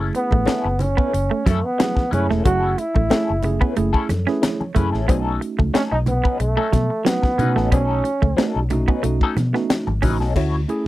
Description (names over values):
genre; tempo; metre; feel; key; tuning
funk; 91 BPM; 4/4; straight; F# dorian; A4 = 440 Hz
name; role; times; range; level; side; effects
electric guitar at the edge of break-up; accompaniment; 0.0-10.7 s; F#3 to C#5; -26 LUFS; left 6 dB; wah, tremolo
mellow tine electric piano; stabs; 0.0-10.9 s; G#3 to C#5; -26 LUFS; right 2 dB; medium stereo tremolo
vintage muted fingered electric bass; bass; 0.0-10.6 s; E1 to B2; -22 LUFS; left 1 dB; none
semi-hollow electric guitar; riff; 0.1-10.2 s; F#3 to C#4; -25 LUFS; right 7 dB; none
tight funk drum kit; drums; 0.1-10.9 s; crash cymbal, hi-hat, kick drum, snare drum; -20 LUFS; left 1 dB; none
congas; percussion; 0.1-10.5 s; none; -30 LUFS; right 3 dB; none
warm trombone; melody; 0.2-8.7 s; A3 to F#4; -22 LUFS; right 1 dB; none
room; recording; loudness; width
little or no reverb; dry, close 1970s-style studio recording; -17 LUFS; side -16 dB against mid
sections
0.0-10.4 A section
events
tine electric piano fill 3.8-5.1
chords
0.0 F#m7; 5.1 B9; 10.4 Dmaj9